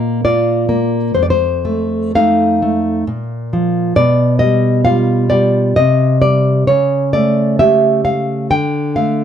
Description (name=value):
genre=romantic piece for solo classical guitar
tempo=66 BPM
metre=3/4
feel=rubato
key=G minor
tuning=A4 = 440 Hz
part: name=nylon-string guitar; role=solo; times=0.0-9.2 s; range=F2 to G5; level=-12 LUFS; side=equal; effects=none
room=moderate studio reverb, RT60 0.8 s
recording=dark, warm production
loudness=-12 LUFS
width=side -9 dB against mid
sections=0.0-9.2 A section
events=none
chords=0.0 Bb; 1.2 F7; 3.1 Bb5; 4.0 G7/B; 5.8 Cm; 6.7 A7/C#; 8.5 Dm